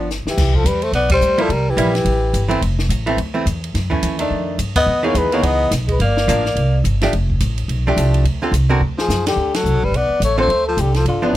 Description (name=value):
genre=jazz, small-group swing and bop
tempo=213 BPM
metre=4/4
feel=swing 59% on 8ths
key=unclear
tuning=A4 = 440 Hz
part: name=archtop guitar, miked and amplified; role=accompaniment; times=0.0-11.4 s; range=D3 to Bb4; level=-20 LUFS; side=right 2 dB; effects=none
part: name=upright bass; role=bass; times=0.0-11.4 s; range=F1 to G2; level=-18 LUFS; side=equal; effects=none
part: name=compact cocktail drum kit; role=drums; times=0.1-11.1 s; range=crash cymbal, hi-hat, kick drum, ride cymbal, snare drum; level=-26 LUFS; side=equal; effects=none
part: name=breathy flugelhorn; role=melody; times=0.3-2.5, 4.8-6.8, 9.0-11.4 s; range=F4 to D#5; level=-19 LUFS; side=left 4 dB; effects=none
part: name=growling tenor saxophone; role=second line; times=0.3-2.5, 4.8-6.8, 9.0-11.4 s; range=D3 to B3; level=-22 LUFS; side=right 2 dB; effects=none
room=little or no reverb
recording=close, detailed microphones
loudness=-15 LUFS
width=side -14 dB against mid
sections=0.4-9.4 A section; 9.4-11.4 B section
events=drum fill 0.1, 8.8-9.4; band accent 1.1, 4.7, 9.2, 9.5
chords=0.4 Cmaj7; 1.5 C7; 2.6 Fmaj7; 3.8 F#m7; 4.3 F13; 4.9 Emaj7; 6.0 Gm7; 6.6 Csus2; 7.1 F69; 8.3 Dm7; 8.8 Ddim; 9.4 Gmaj9; 10.5 F69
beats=0.10 | 0.38 0.66 0.94 1.22 | 1.50 1.78 2.06 2.35 | 2.63 2.91 3.19 3.47 | 3.75 4.03 4.31 4.59 | 4.88 5.16 5.44 5.72 | 6.00 6.28 6.56 6.84 | 7.13 7.41 7.69 7.97 | 8.25 8.53 8.81 9.10 | 9.38 9.66 9.94 10.22 | 10.51 10.79 11.07 11.35